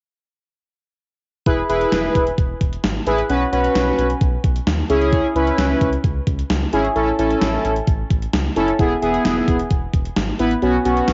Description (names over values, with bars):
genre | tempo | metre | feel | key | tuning
synth-pop | 131 BPM | 4/4 | straight | E major | A4 = 440 Hz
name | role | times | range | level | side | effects
analog synth brass | accompaniment | 1.5-11.1 s | B3 to B4 | -20 LUFS | equal | chorus, cassette tape
round analog bass | bass | 1.5-11.1 s | E1 to D#2 | -26 LUFS | equal | none
gated 80s digital drum machine | drums | 1.5-11.1 s | hi-hat, kick drum, snare drum | -23 LUFS | equal | gated reverb, gated reverb snare, overdrive, cassette tape
room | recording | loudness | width
moderate spring reverb, RT60 2.3 s | home recording on cassette, nothing above 7.6 kHz | -19 LUFS | mono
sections
1.5-11.1 A section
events
none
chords
1.5 E; 3.3 Bsus2; 4.9 C#m; 7.0 A; 8.8 E; 10.6 Bsus2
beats
| 1.46 1.92 2.38 2.84 | 3.29 3.75 4.21 4.67 | 5.13 5.58 6.04 6.50 | 6.96 7.42 7.88 8.33 | 8.79 9.25 9.71 10.16 | 10.62 11.08